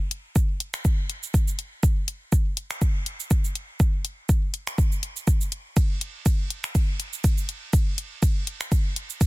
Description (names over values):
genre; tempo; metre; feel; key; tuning
techno; 122 BPM; 4/4; swing 55% on 16ths; none; none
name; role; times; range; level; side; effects
deep house drum kit; drums; 0.1-9.3 s; cabasa, finger snaps, hi-hat, ride cymbal; -32 LUFS; equal; soft clipping on snare
electronic kick drum; drums; 0.4-9.3 s; none; -21 LUFS; equal; none
room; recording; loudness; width
little or no reverb; dense, heavily limited modern master; -22 LUFS; side -20 dB against mid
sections
0.0-9.3 A section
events
none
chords
none